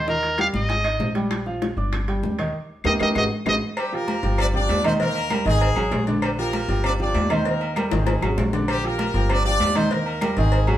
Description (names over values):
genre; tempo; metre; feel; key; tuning
latin, salsa; 195 BPM; 4/4; straight; unclear; A4 = 442 Hz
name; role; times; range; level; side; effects
brilliant trumpet; melody; 0.0-3.6 s; Bb4 to F5; -23 LUFS; equal; none
clear concert grand piano; accompaniment; 0.0-10.8 s; D3 to Eb6; -25 LUFS; right 2 dB; none
upright bass; bass; 0.0-10.8 s; G1 to Eb2; -25 LUFS; equal; none
bongos and cowbell; percussion; 0.1-10.7 s; none; -31 LUFS; left 3 dB; none
congas; percussion; 0.1-10.8 s; none; -29 LUFS; left 1 dB; none
timbales and agogo bells; percussion; 0.2-10.8 s; none; -31 LUFS; right 1 dB; none
claves; percussion; 0.4-10.8 s; none; -37 LUFS; left 3 dB; none
brilliant horn section; melody; 3.8-10.8 s; G3 to D5; -26 LUFS; equal; none
room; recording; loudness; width
moderate stone room reverb, RT60 1.1 s; band playing live in one room; -20 LUFS; side -12 dB against mid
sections
0.0-3.8 A section; 3.8-10.8 B section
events
band accent 2.5-3.8; drum fill 3.0-3.8, 7.9-8.7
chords
0.1 Eb; 0.7 Ab5; 1.3 Bb6; 1.9 G5; 2.5 Eb; 3.2 Ab5; 3.8 Bb5; 4.4 G5; 5.0 Eb; 5.6 Ab5; 6.2 Bb6; 6.8 G5; 7.5 Eb; 8.1 Ab5; 8.7 Bb6; 9.3 G5; 9.9 Eb